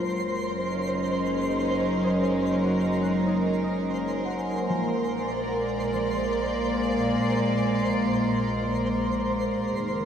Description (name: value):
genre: ambient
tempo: 73 BPM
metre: 3/4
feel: straight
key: Bb mixolydian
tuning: A4 = 439 Hz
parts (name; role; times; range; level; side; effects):
- clear studio string section; sustained chords; 0.0-10.1 s; Bb2 to D5; -25 LUFS; equal; low-pass filter
- concert harp; arpeggios; 0.0-7.7 s; F3 to Gb6; -37 LUFS; left 2 dB; diffuse ambient delay
- dark studio double bass section; bass; 0.0-10.1 s; Gb1 to Bb1; -38 LUFS; equal; none
- overtone-sweeping drone; drone; 0.0-10.1 s; Ab3 to Bb3; -33 LUFS; equal; chorus, built-in reverb
- twinkling granular texture; texture; 0.0-10.1 s; C5 to C6; -31 LUFS; right 1 dB; built-in reverb
room: wet concert hall reverb, RT60 2.1 s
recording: dark, warm production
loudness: -23 LUFS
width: side -8 dB against mid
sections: 0.0-10.1 A section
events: fade-in on double bass section 0.0-10.1; fade-out on harp 0.0-10.1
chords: 0.0 Gb6; 4.9 Bb7